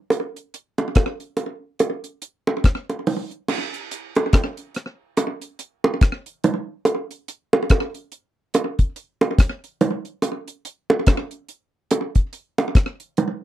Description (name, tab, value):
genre	reggae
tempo	71 BPM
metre	4/4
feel	swing 58% on 16ths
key	none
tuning	none
part	deep reggae drum kit	drums	0.1-13.4 s	crash cymbal, hi-hat, kick drum, rim click	-18 LUFS	left 1 dB	slapback echo
part	bongos	percussion	0.1-13.4 s	none	-20 LUFS	right 2 dB	slapback echo
room	light reverb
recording	dry, close 1970s-style studio recording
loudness	-20 LUFS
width	side -13 dB against mid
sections	0.0-3.5 A section; 3.5-13.4 B section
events	none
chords	none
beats	| 0.11 0.96 1.80 2.65 | 3.49 4.33 5.17 6.02 | 6.86 7.70 8.54 9.39 | 10.23 11.07 11.91 12.75